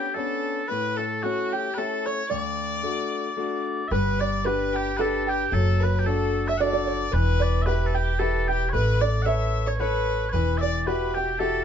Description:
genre	celtic folk, Celtic waltz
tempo	112 BPM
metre	3/4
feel	swing 54% on 8ths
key	D major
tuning	A4 = 437 Hz
part	mellow small bagpipes	melody	0.0-11.6 s	F#4 to F#5	-29 LUFS	equal	none
part	clear fiddle	second line	0.0-11.6 s	F#4 to E5	-32 LUFS	left 6 dB	none
part	open-back banjo	second line	0.0-11.6 s	F#4 to E5	-30 LUFS	right 6 dB	none
part	bright concert grand piano	accompaniment	0.0-11.6 s	D2 to C#5	-29 LUFS	left 4 dB	none
part	upright bass	bass	3.9-11.6 s	E1 to A1	-25 LUFS	right 1 dB	none
room	light reverb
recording	dark, warm production, nothing above 7.7 kHz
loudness	-22 LUFS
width	side -8 dB against mid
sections	0.0-3.9 A section; 3.9-11.6 B section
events	none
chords	0.0 Bmadd9; 0.7 A; 2.3 D; 3.9 G; 5.5 D/F#; 7.1 Em; 8.7 Aadd9; 10.3 Emadd9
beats	0.15 | 0.69 1.22 1.76 | 2.30 2.84 3.38 | 3.91 4.45 4.98 | 5.52 6.05 6.59 | 7.12 7.66 8.19 | 8.73 9.26 9.80 | 10.33 10.87 11.40

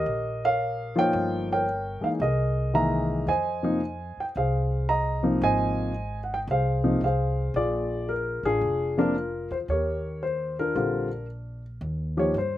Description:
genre	jazz piano trio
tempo	112 BPM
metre	4/4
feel	swing 67% on 8ths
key	Eb mixolydian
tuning	A4 = 441 Hz
part	dark baby grand piano	melody	0.0-12.6 s	C3 to Bb5	-25 LUFS	left 1 dB	none
part	upright bass	bass	0.0-12.6 s	F1 to G2	-30 LUFS	equal	none
room	little or no reverb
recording	recorded outdoors, with no room sound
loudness	-24 LUFS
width	side -13 dB against mid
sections	0.0-11.8 A section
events	none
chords	0.0 Eb7; 1.1 Gm7b5; 2.2 C7alt; 3.3 Fm7; 7.6 Bb7; 9.7 Eb7; 10.8 Bb; 11.8 Eb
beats	0.07 0.61 | 1.14 1.68 2.21 2.75 | 3.28 3.81 4.35 4.88 | 5.42 5.95 6.48 7.02 | 7.55 8.09 8.62 9.15 | 9.69 10.22 10.75 11.29 | 11.82 12.35

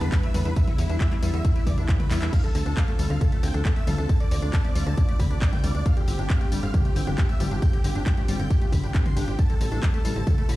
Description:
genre	uplifting trance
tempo	136 BPM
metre	4/4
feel	straight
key	D dorian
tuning	A4 = 440 Hz
part	big supersaw lead	melody	0.0-10.6 s	E4 to C6	-34 LUFS	equal	sidechain pumping, ping-pong delay
part	liquid acid bass	arpeggios	0.0-10.5 s	B2 to D4	-36 LUFS	left 4 dB	chorus, sidechain pumping, ping-pong delay
part	tight sequencer bass	bass	0.0-10.6 s	G1 to E2	-24 LUFS	equal	sidechain pumping
part	house drum kit	drums	0.0-10.6 s	crash cymbal, handclaps, hi-hat, tambourine, toms	-33 LUFS	left 1 dB	none
part	electronic kick drum	drums	0.1-10.4 s	none	-22 LUFS	equal	none
room	little or no reverb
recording	played on a big sound system in a bare room, large studio reverb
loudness	-21 LUFS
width	side -17 dB against mid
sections	0.0-10.6 A section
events	drum fill 2.1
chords	0.0 Em7; 2.3 Dm7; 5.9 G7sus4; 9.4 Am7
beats	0.12 | 0.56 1.00 1.45 1.89 | 2.33 2.77 3.21 3.65 | 4.09 4.53 4.97 5.42 | 5.86 6.30 6.74 7.18 | 7.62 8.06 8.50 8.95 | 9.39 9.83 10.27

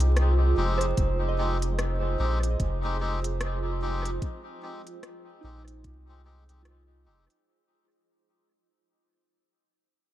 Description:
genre	ambient dub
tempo	74 BPM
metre	4/4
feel	swing 60% on 16ths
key	F minor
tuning	A4 = 441 Hz
part	granular cloud pad	sustained chords	0.0-7.5 s	F4 to Eb5	-34 LUFS	right 3 dB	built-in reverb
part	soft synth bell	arpeggios	0.0-8.4 s	Eb4 to Eb5	-38 LUFS	right 4 dB	chorus, tape echo
part	soft dub sub bass	bass	0.0-7.3 s	F1 to C2	-26 LUFS	equal	none
part	organic electronic drum kit	drums	0.0-7.4 s	hi-hat, rim click	-38 LUFS	left 1 dB	small room ambience, dub echo
part	melodica	stabs	0.6-7.2 s	Ab3 to G4	-34 LUFS	left 3 dB	dub echo
part	electronic kick drum	drums	1.0-6.0 s	none	-29 LUFS	equal	small room ambience
room	light reverb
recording	vinyl crackle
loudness	-24 LUFS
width	side -14 dB against mid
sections	0.0-7.5 A section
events	fade-out 0.0-7.5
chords	0.0 Fm7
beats	0.17 | 0.98 1.79 2.60 3.41 | 4.22 5.03 5.84 6.65

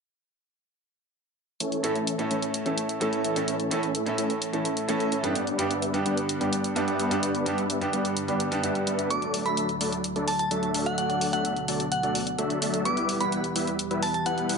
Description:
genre	EDM, festival progressive house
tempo	128 BPM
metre	4/4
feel	straight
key	unclear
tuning	A4 = 439 Hz
part	lush unison pad	sustained chords	1.6-14.6 s	D2 to C#4	-35 LUFS	left 1 dB	chorus
part	supersaw chords	riff	1.6-14.6 s	E3 to F#5	-28 LUFS	left 1 dB	low-pass filter, tape echo
part	electronic hi-hat	drums	1.6-14.6 s	none	-32 LUFS	equal	none
part	bright concert grand piano	accompaniment	1.8-9.1 s	G2 to A4	-28 LUFS	right 2 dB	tape echo
part	glassy synth bell	melody	9.1-14.4 s	F#5 to D6	-29 LUFS	right 1 dB	chorus, tremolo, tape echo
room	moderate digital room reverb, RT60 1.2 s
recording	nothing above 10.3 kHz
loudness	-24 LUFS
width	side -5 dB against mid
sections	1.6-14.6 A section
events	filter sweep on analog synth pad 1.6-14.6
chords	1.6 A; 5.4 G; 9.1 D; 12.9 Em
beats	| 1.60 2.07 2.54 3.01 | 3.48 3.95 4.42 4.88 | 5.35 5.82 6.29 6.76 | 7.23 7.70 8.17 8.63 | 9.10 9.57 10.04 10.51 | 10.98 11.45 11.92 12.38 | 12.85 13.32 13.79 14.26

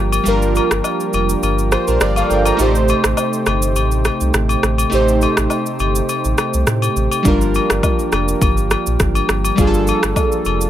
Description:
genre	afrobeats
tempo	103 BPM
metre	4/4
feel	swing 55% on 16ths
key	G minor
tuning	A4 = 440 Hz
part	glassy digital keys	accompaniment	0.0-10.7 s	G3 to Bb5	-19 LUFS	right 1 dB	chorus
part	pipe organ, flutes	sustained chords	0.0-10.7 s	C3 to A4	-23 LUFS	right 2 dB	none
part	sub bass with octave	bass	0.0-10.7 s	F1 to A2	-19 LUFS	equal	none
part	afro-pop drum kit	drums	0.1-10.7 s	kick drum, rim click, shaker	-19 LUFS	equal	none
part	agogo bells and woodblock	percussion	0.1-10.6 s	none	-23 LUFS	left 8 dB	none
room	light reverb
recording	none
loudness	-14 LUFS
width	side -12 dB against mid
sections	0.0-10.7 A section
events	break 0.0-7.3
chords	0.0 Gm7; 2.6 Am7b5; 7.3 Gm7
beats	| 0.26 0.84 1.43 2.01 | 2.59 3.17 3.76 4.34 | 4.92 5.50 6.09 6.67 | 7.25 7.83 8.42 9.00 | 9.58 10.16

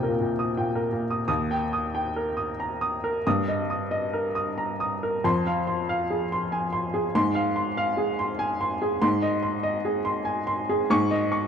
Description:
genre	classical, romantic character piece for solo piano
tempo	94 BPM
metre	3/4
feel	uneven beats, rubato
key	Eb major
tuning	A4 = 439 Hz
part	clear upright piano	solo	0.0-11.5 s	Eb2 to Eb6	-23 LUFS	equal	none
room	moderate recital hall reverb, RT60 1.6 s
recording	dark, warm production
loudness	-24 LUFS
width	side -7 dB against mid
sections	0.0-1.3 A section; 1.3-11.5 B section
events	none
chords	0.0 Eb; 3.3 Eb/G; 5.2 Fm; 7.1 Fm/Ab; 9.0 Ab; 10.9 Eb7(no3)/Ab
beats	0.56 | 1.28 1.95 2.60 | 3.25 3.91 4.57 | 5.23 5.89 6.52 | 7.13 7.75 8.38 | 9.02 9.65 10.27 | 10.90

